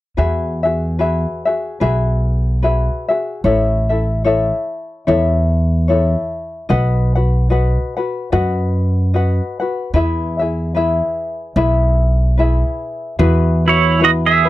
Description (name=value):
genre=Hawaiian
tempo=74 BPM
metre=4/4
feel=swing 57% on 8ths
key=E major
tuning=A4 = 439 Hz
part: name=tenor ukulele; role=accompaniment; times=0.2-14.5 s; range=E4 to F#5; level=-18 LUFS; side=left 3 dB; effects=none
part: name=upright bass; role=bass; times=0.2-14.5 s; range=A1 to F#2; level=-16 LUFS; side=equal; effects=none
part: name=pedal steel guitar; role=melody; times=13.7-14.5 s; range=E4 to E5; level=-12 LUFS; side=right 6 dB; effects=none
room=light reverb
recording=dry, close 1970s-style studio recording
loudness=-14 LUFS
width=side -15 dB against mid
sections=0.2-13.2 A section; 13.2-14.5 B section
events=none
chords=0.2 Eadd9; 3.4 A; 6.7 B; 10.0 E; 13.2 Eadd9